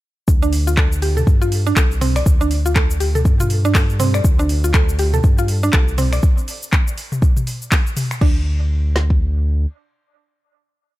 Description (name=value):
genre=afro house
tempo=121 BPM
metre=4/4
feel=swing 59% on 16ths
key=unclear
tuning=A4 = 441 Hz
part: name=round analog bass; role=bass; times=0.3-9.7 s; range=C2 to G2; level=-18 LUFS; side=equal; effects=sidechain pumping
part: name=afro-pop drum kit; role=drums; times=0.3-8.3 s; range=crash cymbal, finger snaps, handclaps, hi-hat, shaker, toms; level=-23 LUFS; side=left 1 dB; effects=overdrive, studio ambience
part: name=deep house drum kit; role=drums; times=0.3-9.2 s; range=kick drum, snare drum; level=-15 LUFS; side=equal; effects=studio ambience
part: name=mallet-like synth pluck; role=arpeggios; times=0.4-8.4 s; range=C4 to D5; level=-22 LUFS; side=right 2 dB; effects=chorus, cassette tape, sidechain pumping, dub echo
room=digital ambience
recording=none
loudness=-14 LUFS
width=side -16 dB against mid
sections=0.3-8.2 drop; 8.2-11.0 final note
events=drop 0.3-8.2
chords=0.3 Csus2; 8.2 N.C.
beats=| 0.28 0.78 1.27 1.77 | 2.26 2.76 3.25 3.75 | 4.25 4.74 5.24 5.73 | 6.23 6.72 7.22 7.72 | 8.21 8.71 9.20